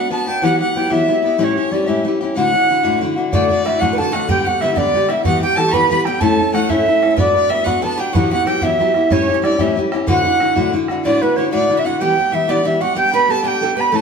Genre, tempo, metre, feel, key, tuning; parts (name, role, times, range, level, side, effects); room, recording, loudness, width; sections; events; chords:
celtic folk, Celtic jig; 124 BPM (dotted quarters); 6/8; straight; D major; A4 = 436 Hz
mellow wooden flute; melody; 0.0-14.0 s; B4 to B5; -17 LUFS; right 2 dB
clear fiddle; second line; 0.0-14.0 s; B4 to C#6; -27 LUFS; left 1 dB
fingerpicked steel-string acoustic guitar; accompaniment; 0.0-14.0 s; D2 to B4; -18 LUFS; left 3 dB
oud; second line; 3.3-14.0 s; B3 to B4; -24 LUFS; right 6 dB
bodhran; percussion; 3.3-11.0 s; -23 LUFS; right 2 dB
wet stone room reverb, RT60 1.1 s; band playing live in one room; -14 LUFS; side -6 dB against mid
0.0-3.3 A section; 3.3-11.0 A section; 11.0-14.0 B section
0.4 Emadd9; 1.4 A7; 2.4 Dadd9; 3.3 D; 4.3 G/D; 5.3 Em; 6.2 A; 7.2 Bm; 8.1 Emadd9; 9.1 A7; 10.1 Dadd9; 12.0 Em; 13.0 G